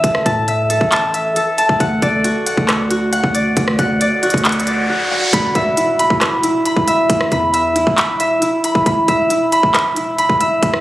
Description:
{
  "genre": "hip hop, trap",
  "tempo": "136 BPM",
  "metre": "4/4",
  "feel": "half-time",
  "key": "unclear",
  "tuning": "A4 = 439 Hz",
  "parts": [
    { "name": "concert harp", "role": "arpeggios", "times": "0.0-10.8 s", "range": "E4 to B5", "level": "-15 LUFS", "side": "equal", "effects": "low-pass filter, ping-pong delay" },
    { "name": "long sustained 808-style bass", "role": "bass", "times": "0.0-10.8 s", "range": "E1 to A2", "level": "-22 LUFS", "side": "equal", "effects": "none" },
    { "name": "trap drum kit", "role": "drums", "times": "0.0-10.8 s", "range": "handclaps, hi-hat, kick drum, rim click", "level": "-18 LUFS", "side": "equal", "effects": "none" },
    { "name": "riser and impact", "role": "sound effects", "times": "4.1-7.1 s", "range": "none", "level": "-23 LUFS", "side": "equal", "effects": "none" }
  ],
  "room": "moderate lush hall reverb, RT60 1.9 s",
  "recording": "recorded on a phone in the room, studio reverb, compression",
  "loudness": "-13 LUFS",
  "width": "side -15 dB against mid",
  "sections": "0.0-5.3 A section; 5.3-10.8 B section",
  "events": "riser 4.1-5.3; drums muted 4.9-5.3; impact 5.3-7.1",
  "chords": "0.0 A5; 1.8 D; 5.3 E5"
}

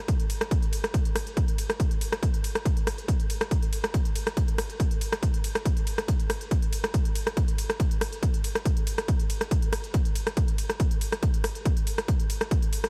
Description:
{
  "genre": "techno",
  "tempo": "140 BPM",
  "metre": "4/4",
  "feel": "straight",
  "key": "none",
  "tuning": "none",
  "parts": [
    { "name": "electronic kick drum", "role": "drums", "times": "0.1-12.6 s", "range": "none", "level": "-28 LUFS", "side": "equal", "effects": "none" },
    { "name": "techno drum kit", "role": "drums", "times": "0.1-12.9 s", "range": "hi-hat, ride cymbal, rim click", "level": "-34 LUFS", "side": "equal", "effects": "none" }
  ],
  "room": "light reverb",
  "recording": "none",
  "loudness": "-27 LUFS",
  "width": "mono",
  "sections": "0.0-12.9 A section",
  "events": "none",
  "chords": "none"
}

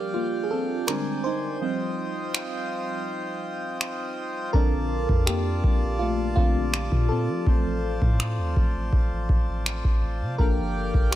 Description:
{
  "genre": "contemporary R&B",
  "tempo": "82 BPM",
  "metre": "4/4",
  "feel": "straight",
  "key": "Bb major",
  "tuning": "A4 = 439 Hz",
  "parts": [
    { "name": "FM electric piano with auto-pan", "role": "accompaniment", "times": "0.0-11.2 s", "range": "D3 to C5", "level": "-28 LUFS", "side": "equal", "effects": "phaser" },
    { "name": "pedal harmonium", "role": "sustained chords", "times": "0.0-11.2 s", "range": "F4 to A5", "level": "-32 LUFS", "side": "equal", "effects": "none" },
    { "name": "booming analog drum machine", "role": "drums", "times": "0.9-11.2 s", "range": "finger snaps, kick drum", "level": "-23 LUFS", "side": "equal", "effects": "overdrive" },
    { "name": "warm 808-style bass", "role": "bass", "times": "4.5-11.2 s", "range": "G1 to F3", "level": "-27 LUFS", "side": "equal", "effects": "none" }
  ],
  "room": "little or no reverb",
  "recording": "none",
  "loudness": "-23 LUFS",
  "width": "side -13 dB against mid",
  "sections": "0.0-11.2 A section",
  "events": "break 0.0-4.5; FM electric piano solo 0.0-11.2",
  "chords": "0.0 Gm7; 0.9 Bb13; 1.6 Eb69; 4.5 Bbmaj7; 7.5 Dm7/A; 10.4 Gm7"
}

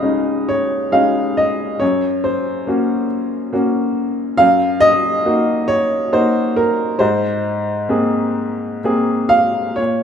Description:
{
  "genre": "classical, lyrical solo piano",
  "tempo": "68 BPM",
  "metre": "3/4",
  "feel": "rubato",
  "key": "unclear",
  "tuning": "A4 = 440 Hz",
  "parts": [
    { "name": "warm upright piano", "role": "solo", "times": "0.0-10.0 s", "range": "Db2 to F5", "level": "-14 LUFS", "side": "equal", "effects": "none" }
  ],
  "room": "light reverb",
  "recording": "minimal, uncompressed stereo recording",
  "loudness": "-15 LUFS",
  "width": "side -8 dB against mid",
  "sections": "0.0-9.8 A section",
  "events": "none",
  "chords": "0.0 Dbsus2; 1.8 Gb; 4.4 Ebm/Gb; 7.0 Abadd9"
}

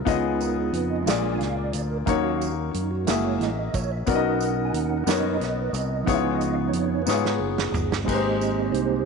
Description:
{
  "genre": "slow gospel",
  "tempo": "60 BPM (dotted quarters)",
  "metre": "6/8",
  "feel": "straight",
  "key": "unclear",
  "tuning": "A4 = 440 Hz",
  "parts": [
    { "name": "clear baby grand piano", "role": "accompaniment", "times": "0.0-9.1 s", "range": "Ab2 to E5", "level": "-26 LUFS", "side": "left 13 dB", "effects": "none" },
    { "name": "fingered electric bass", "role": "bass", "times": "0.0-9.0 s", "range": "F#1 to G#2", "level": "-29 LUFS", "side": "equal", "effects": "none" },
    { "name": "mellow tonewheel organ", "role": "sustained chords", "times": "0.1-9.1 s", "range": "E#3 to G#5", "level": "-27 LUFS", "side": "right 10 dB", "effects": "fast rotary speaker, chorus vibrato" },
    { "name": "natural country drum kit", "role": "drums", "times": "0.1-8.9 s", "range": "crash cymbal, hi-hat, kick drum, snare drum, toms", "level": "-29 LUFS", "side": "right 4 dB", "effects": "none" },
    { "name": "tambourine", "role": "percussion", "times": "0.1-8.7 s", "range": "none", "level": "-38 LUFS", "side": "right 16 dB", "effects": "none" }
  ],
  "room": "moderate plate reverb, RT60 2.5 s",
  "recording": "1960s-style stereo with parts hard left and right, nothing above 11.0 kHz",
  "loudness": "-22 LUFS",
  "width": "side -5 dB against mid",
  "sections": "0.0-8.1 A section",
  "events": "tonewheel organ solo 0.0-8.1; drum fill 7.1-8.1",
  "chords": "0.0 C#7; 1.1 A#7; 2.1 D#m7; 3.1 F#9; 4.1 Bmaj7; 6.1 C#7; 8.1 Abmaj7"
}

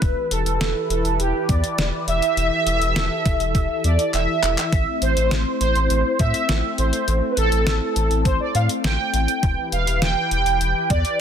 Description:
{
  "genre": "synth-pop",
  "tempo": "102 BPM",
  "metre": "4/4",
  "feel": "straight",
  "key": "A minor",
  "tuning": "A4 = 440 Hz",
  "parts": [
    { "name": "mellow synth brass", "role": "melody", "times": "0.0-11.2 s", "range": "G4 to G5", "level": "-22 LUFS", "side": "right 2 dB", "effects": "chorus, phaser, digital delay" },
    { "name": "sweeping resonant pad", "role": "sustained chords", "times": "0.0-11.2 s", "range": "E3 to B4", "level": "-27 LUFS", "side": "left 2 dB", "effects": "wide subtle chorus" },
    { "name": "round analog bass", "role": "bass", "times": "0.0-11.0 s", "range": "E1 to A2", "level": "-22 LUFS", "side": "equal", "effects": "none" },
    { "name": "detuned 8-bit digital drum machine", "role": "drums", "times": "0.0-11.2 s", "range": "handclaps, hi-hat, kick drum, snare drum", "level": "-24 LUFS", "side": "equal", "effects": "overdrive" }
  ],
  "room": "light reverb",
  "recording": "dense, heavily limited modern master",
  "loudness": "-18 LUFS",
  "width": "side -8 dB against mid",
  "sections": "0.0-11.2 A section",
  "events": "drum fill 4.1-4.7",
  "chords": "0.0 Em; 4.7 Am; 9.4 Em"
}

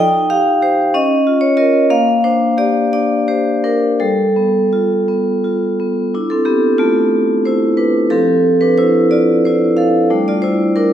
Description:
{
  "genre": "classical, contemporary piece for solo vibraphone",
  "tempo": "55-63 BPM (dotted quarters)",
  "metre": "6/8",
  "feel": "rubato",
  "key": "unclear",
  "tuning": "A4 = 440 Hz",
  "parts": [
    { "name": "vibraphone with medium hard mallets", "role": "solo", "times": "0.0-10.9 s", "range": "F3 to G5", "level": "-12 LUFS", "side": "equal", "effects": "none" }
  ],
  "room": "wet recital hall reverb, RT60 1.5 s",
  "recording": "heard from further back in the room",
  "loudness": "-12 LUFS",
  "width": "side -10 dB against mid",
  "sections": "0.0-6.1 A section; 6.1-10.9 B section",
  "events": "none",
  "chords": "0.0 Eb69; 0.9 C#69; 1.9 Bb6; 4.0 G9; 6.1 Dmadd9; 8.1 Fadd9; 10.1 Gmadd9"
}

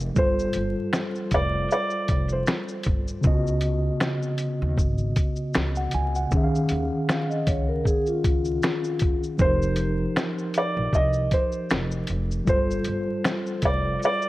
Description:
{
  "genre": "lo-fi hip hop",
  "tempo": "78 BPM",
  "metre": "4/4",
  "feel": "swing 55% on 16ths",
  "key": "unclear",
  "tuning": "A4 = 439 Hz",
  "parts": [
    { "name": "mellow tine electric piano", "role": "accompaniment", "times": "0.0-14.3 s", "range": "Db3 to Ab5", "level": "-27 LUFS", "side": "equal", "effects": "medium stereo tremolo, cassette tape, low-pass filter" },
    { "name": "upright bass", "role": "bass", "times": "0.0-13.9 s", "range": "F1 to Eb2", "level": "-28 LUFS", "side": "equal", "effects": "none" },
    { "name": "lo-fi sampler-style drum kit", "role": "drums", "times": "0.0-14.3 s", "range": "finger snaps, hi-hat, kick drum, shaker, snare drum", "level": "-25 LUFS", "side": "equal", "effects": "none" },
    { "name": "felt-muted upright piano", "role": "melody", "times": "0.2-2.7, 9.4-14.3 s", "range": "C5 to Eb5", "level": "-26 LUFS", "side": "right 1 dB", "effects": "low-pass filter, tape echo" },
    { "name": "vibraphone with soft mallets", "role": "second line", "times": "7.1-9.2 s", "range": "F4 to F5", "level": "-28 LUFS", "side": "left 3 dB", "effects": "low-pass filter, tape echo" }
  ],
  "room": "light reverb, small room ambience",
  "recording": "vinyl crackle",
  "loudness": "-22 LUFS",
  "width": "side -17 dB against mid",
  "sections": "0.0-14.3 A section",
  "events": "none",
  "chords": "0.2 G9sus4; 3.2 Db9sus4; 6.3 Eb9sus4; 9.4 F9sus4; 12.5 G9sus4"
}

